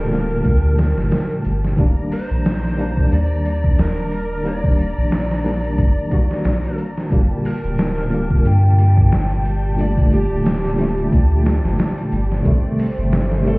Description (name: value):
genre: trip hop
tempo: 90 BPM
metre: 4/4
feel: swing 57% on 16ths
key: G minor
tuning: A4 = 440 Hz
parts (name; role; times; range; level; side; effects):
- overdriven slide guitar; melody; 0.0-13.6 s; G4 to G5; -27 LUFS; equal; vintage 12-bit sampler grit, tape echo
- tine electric piano; accompaniment; 0.0-13.6 s; Bb2 to F#4; -21 LUFS; equal; tremolo, vintage 12-bit sampler grit, tape echo
- warm symphonic violin section; sustained chords; 0.0-13.6 s; G3 to Bb5; -32 LUFS; equal; none
- soft dub sub bass; bass; 0.0-13.6 s; D1 to G2; -19 LUFS; equal; tube saturation
- trip hop sampler-style drum kit; drums; 0.1-13.6 s; hi-hat, kick drum, snare drum; -20 LUFS; equal; none
- tube shaker; percussion; 0.1-13.6 s; none; barely audible; none; none
- bowed-like drone; texture; 8.2-13.6 s; D5; -40 LUFS; right 2 dB; built-in reverb, phaser
room: little or no reverb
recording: heard muffled through a wall, stone room reverb, vinyl crackle, EQ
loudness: -15 LUFS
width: side -25 dB against mid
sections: 0.0-13.6 A section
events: none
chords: 0.0 Gmadd9; 1.8 Ebmaj7; 7.1 Gmadd9; 12.4 Am7b5